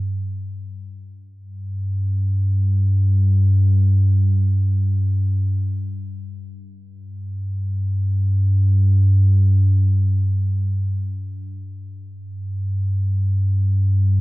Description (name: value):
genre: ambient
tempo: free time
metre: none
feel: none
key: unclear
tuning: A4 = 436 Hz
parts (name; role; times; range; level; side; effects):
- deep rumbling drone; solo; 0.0-14.2 s; G2; -17 LUFS; equal; built-in reverb
room: light reverb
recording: dark, warm production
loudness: -16 LUFS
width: side -21 dB against mid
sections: 0.0-14.2 A section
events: none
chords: none